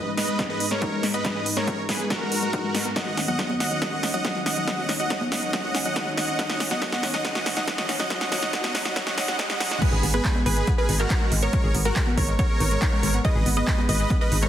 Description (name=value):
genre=uplifting trance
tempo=140 BPM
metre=4/4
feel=straight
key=G# minor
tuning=A4 = 438 Hz
part: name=dense compressed supersaw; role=melody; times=0.0-14.5 s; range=F#4 to F#5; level=-27 LUFS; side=right 1 dB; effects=sidechain pumping, dub echo
part: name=lush unison pad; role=sustained chords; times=0.0-14.5 s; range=D#2 to F#4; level=-33 LUFS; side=equal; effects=chorus, sidechain pumping
part: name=analog pluck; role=arpeggios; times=0.0-14.5 s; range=F#3 to A#4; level=-34 LUFS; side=left 5 dB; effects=chorus, sidechain pumping, tape echo
part: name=big-room dance drum kit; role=drums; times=0.2-14.5 s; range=congas, crash cymbal, handclaps, hi-hat, snare drum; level=-27 LUFS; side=right 1 dB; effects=overdrive
part: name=electronic kick drum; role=drums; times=0.4-14.2 s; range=none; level=-26 LUFS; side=equal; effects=overdrive, high-pass filter on kick, high-pass filter on room
part: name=riser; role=sound effects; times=5.7-9.8 s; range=none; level=-39 LUFS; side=right 2 dB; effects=none
part: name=wide unison pluck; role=second line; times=9.8-14.5 s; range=A#4 to D#5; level=-33 LUFS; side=right 1 dB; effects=sidechain pumping, tape echo
part: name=solid FM bass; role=bass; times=9.9-14.5 s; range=G#1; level=-25 LUFS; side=equal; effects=sidechain pumping
room=moderate recital hall reverb, RT60 1.5 s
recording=dense, heavily limited modern master, high-pass filter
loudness=-21 LUFS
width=side -11 dB against mid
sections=0.0-9.8 A section; 9.8-14.5 B section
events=build-up 0.0-9.8; drum fill 0.0-9.8; filter sweep on synth arpeggio sound 0.0-9.8; drop 9.8-14.5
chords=0.0 G#madd9; 3.0 D#m7; 9.8 G#madd9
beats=0.39 0.82 | 1.25 1.68 2.10 2.53 | 2.96 3.39 3.82 4.25 | 4.67 5.10 5.53 5.96 | 6.39 6.82 7.25 7.67 | 8.10 8.53 8.96 9.39 | 9.82 10.25 10.68 11.10 | 11.53 11.96 12.39 12.82 | 13.25 13.68 14.10